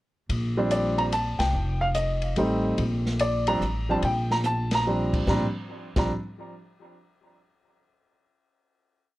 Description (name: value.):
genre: jazz piano trio.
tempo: 144 BPM.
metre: 3/4.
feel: swing 66% on 8ths.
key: Bb major.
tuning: A4 = 441 Hz.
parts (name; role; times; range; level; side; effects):
upright bass; bass; 0.3-6.1 s; F1 to C2; -27 LUFS; equal; none.
open jazz drum kit; drums; 0.3-6.0 s; crash cymbal, hi-hat, kick drum, ride cymbal, snare drum, toms; -33 LUFS; equal; none.
warm grand piano; melody; 0.6-6.1 s; F3 to Bb5; -25 LUFS; equal; analog delay.
room: little or no reverb.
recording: dry, gritty hardware recording.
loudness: -23 LUFS.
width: side -17 dB against mid.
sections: 0.3-5.3 A section; 5.3-6.5 final chord.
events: band accent 1.3, 4.7; drum fill 4.4-4.9.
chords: 0.3 Bb69; 1.5 F9; 2.8 Bb69.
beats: | 0.29 0.71 1.12 | 1.54 1.95 2.37 | 2.79 3.20 3.62 | 4.03 4.45 4.86 | 5.28 5.69 6.11.